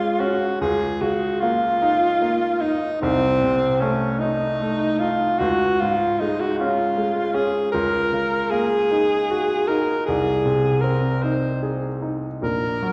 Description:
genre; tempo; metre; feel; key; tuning
classical, romantic duo for alto saxophone and grand piano; 51 BPM (dotted quarters); 6/8; uneven beats, rubato; Db major; A4 = 440 Hz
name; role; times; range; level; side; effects
bright alto saxophone; melody; 0.0-12.9 s; C4 to C5; -23 LUFS; equal; none
clear baby grand piano; accompaniment; 0.0-12.9 s; Bb1 to Ab4; -26 LUFS; equal; none
room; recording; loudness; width
wet recital hall reverb, RT60 1.4 s; recorded in a church or concert hall; -21 LUFS; mono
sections
0.0-12.9 A section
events
none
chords
0.0 Db; 0.6 Eb5/Db; 3.0 Cm6; 5.4 Db; 7.7 Ebm7/Db; 10.1 Ab/C; 12.4 Gb/Bb

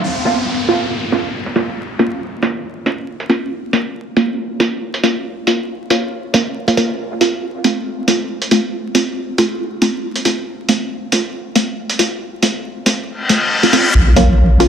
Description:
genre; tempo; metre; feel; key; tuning
deep dubstep; 138 BPM; 4/4; swing 56% on 16ths, half-time; Bb harmonic minor; A4 = 440 Hz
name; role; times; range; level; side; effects
downlifter, reverse cymbal and riser; sound effects; 0.0-3.5, 13.2-14.7 s; none; -19 LUFS; left 2 dB; none
filtered dub chord stab; stabs; 0.3-14.7 s; A3 to F4; -17 LUFS; right 1 dB; phaser, dub echo
electronic hi-hat; drums; 0.3-14.7 s; none; -20 LUFS; right 2 dB; low-pass filter on hats, low-pass filter on snare, low-pass filter on room
deep soft wobble bass; bass; 13.9-14.7 s; Bb1; -10 LUFS; equal; chorus
congas; percussion; 14.2-14.3 s; none; -22 LUFS; left 2 dB; none
room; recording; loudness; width
wet echo chamber reverb, RT60 2.1 s; dense, heavily limited modern master, vinyl crackle; -14 LUFS; side -8 dB against mid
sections
0.0-13.9 A section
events
filter sweep on drum 0.0-13.9; reverse cymbal 13.2-13.9; riser 13.9-14.7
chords
0.0 Bbm; 7.0 F; 13.9 Bbm

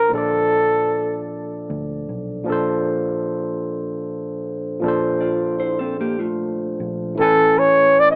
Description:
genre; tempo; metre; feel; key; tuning
R&B; 51 BPM (dotted quarters); 6/8; straight; unclear; A4 = 440 Hz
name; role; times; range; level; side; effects
mellow flugelhorn; melody; 0.0-1.3, 7.2-8.2 s; A4 to D#5; -16 LUFS; equal; cassette tape
barky tine electric piano; accompaniment; 0.0-8.2 s; A2 to G#5; -25 LUFS; equal; overdrive, cassette tape
vintage muted fingered electric bass; bass; 0.0-8.2 s; A1 to D2; -36 LUFS; equal; none
mellow electric guitar; second line; 5.2-7.3 s; A3 to D5; -27 LUFS; equal; vibrato effect, cassette tape
room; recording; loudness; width
moderate booth ambience, RT60 0.2 s; home recording on cassette, AM radio sound; -21 LUFS; mono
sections
0.0-7.2 A section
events
none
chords
0.0 Bbmaj9; 7.2 Amaj9

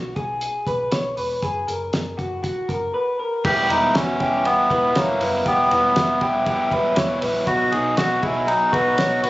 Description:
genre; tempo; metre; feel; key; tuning
jangly indie pop; 119 BPM; 4/4; straight; unclear; A4 = 440 Hz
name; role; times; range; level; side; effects
electric guitar through a small old amp; arpeggios; 0.0-9.3 s; D#4 to C#5; -24 LUFS; left 1 dB; spring reverb
picked electric bass; bass; 0.0-9.3 s; E1 to B1; -33 LUFS; equal; none
cloth-damped thuddy drum kit; drums; 0.2-9.3 s; crash cymbal, hi-hat, kick drum, ride cymbal, snare drum; -27 LUFS; equal; none
melodica; melody; 3.4-9.3 s; A#3 to G#4; -20 LUFS; equal; none
raw garage guitar; accompaniment; 3.4-9.3 s; E2 to F#4; -24 LUFS; right 2 dB; overdrive
room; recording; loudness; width
light reverb, small room ambience; recorded on a phone in the room, studio ambience, compression, nothing above 7.8 kHz; -18 LUFS; side -18 dB against mid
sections
0.0-3.4 A section; 3.4-9.3 B section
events
none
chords
0.0 N.C.; 1.4 F#add9; 3.4 Em; 7.5 B

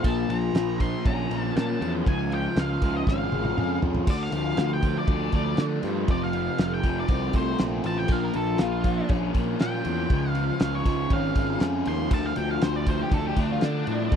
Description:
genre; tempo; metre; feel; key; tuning
psychedelic rock; 119 BPM; 4/4; straight; D minor; A4 = 442 Hz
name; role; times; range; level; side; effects
octave-fuzz lead guitar; melody; 0.0-14.1 s; D4 to C6; -32 LUFS; left 1 dB; distortion, tape echo
raw garage guitar; riff; 0.0-14.2 s; F2 to D4; -27 LUFS; left 1 dB; overdrive, phaser
fuzz picked electric bass; bass; 0.0-14.2 s; F1 to D3; -28 LUFS; equal; overdrive
cloth-damped thuddy drum kit; drums; 0.0-14.2 s; crash cymbal, kick drum, ride cymbal, snare drum, toms; -26 LUFS; equal; none
room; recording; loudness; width
little or no reverb; dry, close 1970s-style studio recording; -23 LUFS; side -8 dB against mid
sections
0.0-4.1 A section; 4.1-14.2 B section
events
drum fill 3.1-4.1; lead electric guitar solo 4.1-14.2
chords
0.0 Bbm; 2.1 C#; 4.1 Dm; 6.1 F; 8.1 Bbm; 10.1 C#; 12.1 Dm

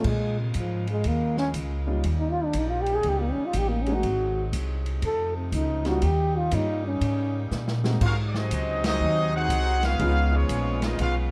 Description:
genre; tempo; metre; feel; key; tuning
jazz, big band swing; 120 BPM; 4/4; swing 66% on 8ths; Ab major from 8.0 s; A4 = 444 Hz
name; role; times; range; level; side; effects
breathy trombone; melody; 0.0-7.5 s; C3 to A4; -29 LUFS; equal; plate reverb
warm baby grand piano; accompaniment; 0.0-11.3 s; G3 to Gb4; -34 LUFS; equal; none
clear saxophone section; sustained chords; 0.0-11.3 s; C3 to F4; -40 LUFS; equal; none
upright bass; bass; 0.0-11.3 s; Ab1 to Bb2; -28 LUFS; equal; none
open jazz drum kit; drums; 0.0-11.1 s; crash cymbal, hi-hat, kick drum, ride cymbal, snare drum; -37 LUFS; equal; none
warm trumpet section; melody; 8.0-11.2 s; Cb4 to Gb5; -30 LUFS; equal; plate reverb
mellow trombone section; second line; 8.0-11.2 s; F3 to Gb4; -34 LUFS; equal; none
room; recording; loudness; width
light reverb; dark, warm production; -25 LUFS; mono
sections
0.0-8.0 A section; 8.0-11.3 B section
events
trombone solo 0.0-8.0; drum fill 7.5-8.0; band accent 8.8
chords
0.1 Bbm7; 2.0 Eb7; 4.0 Ab7; 5.0 F7; 6.0 Eb7; 8.0 Ab7; 10.0 Db7

